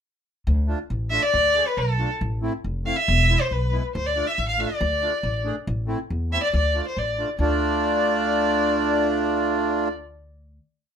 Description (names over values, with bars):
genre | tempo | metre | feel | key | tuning
klezmer | 139 BPM | 2/4 | straight | D dorian sharp4 | A4 = 440 Hz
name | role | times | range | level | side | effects
upright bass | bass | 0.5-10.6 s | E1 to E2 | -25 LUFS | equal | none
accordion | accompaniment | 0.7-9.9 s | G#3 to G#4 | -24 LUFS | right 2 dB | none
warm violin | melody | 1.1-9.9 s | A4 to F5 | -23 LUFS | left 1 dB | none
room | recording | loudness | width
light reverb | minimal, uncompressed stereo recording | -20 LUFS | side -8 dB against mid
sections
0.5-7.4 A section; 7.4-9.1 final chord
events
none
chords
0.5 Dm; 2.2 Am; 3.1 E; 3.9 Dm; 5.7 Am; 6.5 Dm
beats
| 0.46 0.90 | 1.33 1.77 | 2.20 2.64 | 3.07 3.50 | 3.94 4.37 | 4.80 5.23 | 5.67 6.10 | 6.53 6.96 | 7.39 7.82 | 8.25 8.69